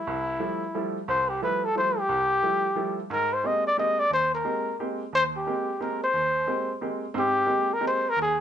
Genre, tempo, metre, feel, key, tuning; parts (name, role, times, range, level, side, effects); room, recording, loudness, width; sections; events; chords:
jazz; 178 BPM; 3/4; swing 63% on 8ths; A4 = 440 Hz
breathy trumpet; melody; 0.0-8.4 s; E4 to Eb5; -24 LUFS; left 1 dB
clear baby grand piano; accompaniment; 0.1-8.4 s; C2 to G4; -31 LUFS; right 3 dB
moderate studio reverb, RT60 0.6 s; nothing above 10.7 kHz; -23 LUFS; side -9 dB against mid
0.0-7.1 A section; 7.1-8.4 B section
0.0 Fmaj9; 3.1 Abmaj9